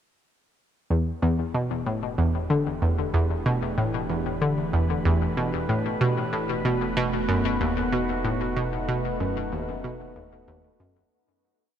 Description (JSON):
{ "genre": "ambient, sequencer-driven space music", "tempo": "94 BPM", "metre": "4/4", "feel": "straight", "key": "E minor", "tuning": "A4 = 440 Hz", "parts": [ { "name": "evolving wavetable pad", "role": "sustained chords", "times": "1.9-11.1 s", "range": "E3 to B4", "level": "-30 LUFS", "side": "right 1 dB", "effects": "phaser, built-in reverb" }, { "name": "analog pluck", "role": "riff", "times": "0.9-11.0 s", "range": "D#2 to D3", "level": "-24 LUFS", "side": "equal", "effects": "chorus, ping-pong delay" }, { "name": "warm sub bass", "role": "bass", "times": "0.9-11.1 s", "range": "E1", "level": "-39 LUFS", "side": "equal", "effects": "tube saturation" } ], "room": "moderate huge ambient reverb, RT60 9.0 s", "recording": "cassette tape", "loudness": "-23 LUFS", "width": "side -9 dB against mid", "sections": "0.9-11.1 A section", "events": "fade-in on ambient pad 0.9-11.1; fade-in on sub bass 0.9-11.1; fade-out 7.7-11.1", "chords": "0.9 Em7; 6.0 B7/E" }